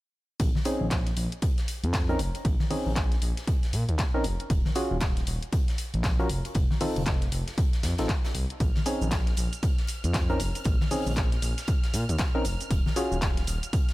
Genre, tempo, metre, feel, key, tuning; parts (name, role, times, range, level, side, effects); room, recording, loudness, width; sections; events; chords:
deep house; 117 BPM; 4/4; swing 61% on 16ths; Bb minor; A4 = 440 Hz
smooth gliding synth bass; bass; 0.4-13.6 s; Eb1 to Bb2; -29 LUFS; equal; sidechain pumping
big rock drum kit; drums; 0.4-13.9 s; hi-hat, snare drum; -42 LUFS; left 1 dB; sidechain pumping on hats, high-pass filter on hats, high-pass filter on snare, high-pass filter on room
electronic kick drum; drums; 0.4-13.9 s; -27 LUFS; equal
house drum kit; drums; 0.4-13.9 s; handclaps, hi-hat, shaker; -35 LUFS; equal
congas; percussion; 0.6-13.2 s; -35 LUFS; left 3 dB
percussive organ stab; stabs; 0.7-13.2 s; C4 to Bb4; -32 LUFS; equal; chorus, sidechain pumping, dub echo
rich studio violin section; texture; 8.6-13.9 s; F6; -41 LUFS; right 1 dB
little or no reverb; -24 LUFS; side -18 dB against mid
0.4-13.9 A section
0.4 Bbm11; 4.5 Ebm11; 6.3 F7; 8.6 Bbm11; 12.7 Ebm11